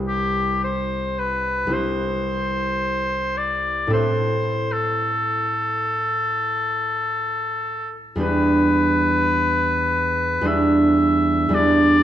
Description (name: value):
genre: classical, impressionist duo for oboe and harp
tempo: 55 BPM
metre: 4/4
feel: rubato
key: C major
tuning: A4 = 442 Hz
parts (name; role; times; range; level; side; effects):
- concert harp; accompaniment; 0.0-12.0 s; C2 to B4; -21 LUFS; right 1 dB; none
- clear oboe; melody; 0.1-12.0 s; G4 to E5; -21 LUFS; left 2 dB; none
room: moderate scoring stage reverb, RT60 1.5 s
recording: dark, warm production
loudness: -18 LUFS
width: side -11 dB against mid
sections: 0.0-12.0 A section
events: none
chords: 0.0 Cmaj7; 3.9 Amadd9; 8.2 Em7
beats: 0.64 1.73 2.83 | 3.93 5.00 6.06 7.14 | 8.22 9.29 10.47 11.55